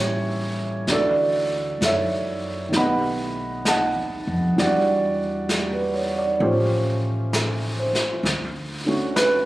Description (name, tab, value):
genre	jazz ballad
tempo	65 BPM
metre	4/4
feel	swing 68% on 8ths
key	D major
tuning	A4 = 440 Hz
part	dark concert grand piano	accompaniment	0.0-9.5 s	D3 to B5	-22 LUFS	right 1 dB	none
part	upright bass	bass	0.0-9.5 s	A1 to F#2	-28 LUFS	equal	none
part	jazz brush drum kit	drums	0.9-9.5 s	brushed snare drum, hi-hat, snare drum	-27 LUFS	equal	none
room	little or no reverb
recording	recorded on a phone in the room, club reverb, compression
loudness	-20 LUFS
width	side -17 dB against mid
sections	0.0-9.5 A section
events	none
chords	0.0 A7b9; 0.9 Dmaj9; 2.7 B7b13; 4.6 Em9; 6.4 A7alt; 8.2 Dmaj7